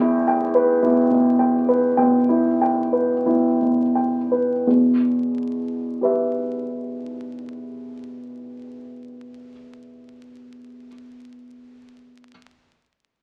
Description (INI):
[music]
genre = neoclassical minimalist piano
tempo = 42-56 BPM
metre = 4/4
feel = rubato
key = E minor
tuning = A4 = 440 Hz
[part]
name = warm upright piano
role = solo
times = 0.0-12.3 s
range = E2 to G5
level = -21 LUFS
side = equal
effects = none
[sound]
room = light reverb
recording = very old 78 rpm record, vinyl crackle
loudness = -20 LUFS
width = mono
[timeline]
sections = 0.0-4.6 A section; 4.6-10.1 B section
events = slowing down 0.0-4.6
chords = 0.0 Em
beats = 0.80 1.97 3.24 | 4.65 6.00 7.36 8.71